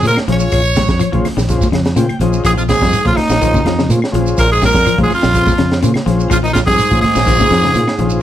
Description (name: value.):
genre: afrobeat.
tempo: 124 BPM.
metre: 4/4.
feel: straight.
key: Bb dorian.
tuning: A4 = 440 Hz.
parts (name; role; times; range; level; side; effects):
growling tenor saxophone; melody; 0.0-8.2 s; Eb4 to Db5; -15 LUFS; equal; none.
brilliant trumpet; second line; 0.0-8.2 s; Eb4 to Db5; -23 LUFS; right 6 dB; none.
electric guitar at the edge of break-up; arpeggios; 0.0-8.2 s; Db3 to G3; -20 LUFS; left 8 dB; none.
fingered electric bass; bass; 0.0-8.2 s; Bb1 to Bb2; -17 LUFS; right 1 dB; none.
crunchy breakbeat drum kit; drums; 0.0-8.1 s; hi-hat, kick drum, snare drum; -18 LUFS; equal; none.
shekere; percussion; 0.0-8.2 s; none; -23 LUFS; right 3 dB; none.
overdriven combo organ; accompaniment; 0.1-8.2 s; Db4 to G5; -21 LUFS; left 3 dB; none.
congas; percussion; 0.1-8.1 s; none; -22 LUFS; right 2 dB; none.
claves; percussion; 0.2-8.0 s; none; -32 LUFS; left 2 dB; none.
brilliant trombone section; second line; 2.5-8.2 s; Eb2 to Bb2; -23 LUFS; right 2 dB; none.
room: light reverb.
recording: none.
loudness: -11 LUFS.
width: side -12 dB against mid.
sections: 0.0-8.2 A section.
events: transistor combo organ fill 1.7-2.5.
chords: 0.0 Bbm7.